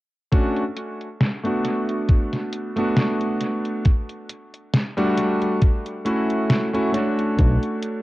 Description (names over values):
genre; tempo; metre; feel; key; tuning
vaporwave; 68 BPM; 4/4; swing 55% on 16ths; unclear; A4 = 440 Hz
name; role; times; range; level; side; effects
warm electric grand piano; accompaniment; 0.3-8.0 s; G3 to C#5; -22 LUFS; equal; wide subtle chorus, analog delay
detuned 8-bit digital drum machine; drums; 0.3-8.0 s; hi-hat, snare drum; -24 LUFS; equal; overdrive, low-pass filter on hats, low-pass filter on snare, low-pass filter on room, analog delay
electronic kick drum; drums; 0.3-7.6 s; none; -17 LUFS; equal; none
fingered electric bass with an envelope filter; bass; 7.4-7.6 s; B1; -19 LUFS; equal; none
room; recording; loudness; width
light reverb, digital ambience; echo-heavy mix, cassette tape; -19 LUFS; side -18 dB against mid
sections
0.3-8.0 A section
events
none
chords
0.3 Bm9; 1.6 Bm7/A; 3.9 Dadd11/G; 5.6 Dmaj9; 7.4 Bm9